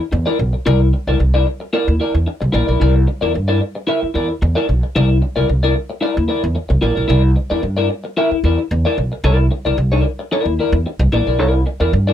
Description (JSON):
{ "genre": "funk", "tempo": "112 BPM", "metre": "4/4", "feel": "straight", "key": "C mixolydian", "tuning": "A4 = 438 Hz", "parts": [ { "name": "electric guitar at the edge of break-up", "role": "accompaniment", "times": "0.0-12.1 s", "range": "E4 to E5", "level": "-18 LUFS", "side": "left 2 dB", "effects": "wide subtle chorus" }, { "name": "upright bass", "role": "bass", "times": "0.1-12.1 s", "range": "Bb1 to G2", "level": "-16 LUFS", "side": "right 1 dB", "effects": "none" } ], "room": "little or no reverb", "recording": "dry, close 1970s-style studio recording", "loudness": "-14 LUFS", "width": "side -10 dB against mid", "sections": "0.0-12.1 A section", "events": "none", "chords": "0.0 C9" }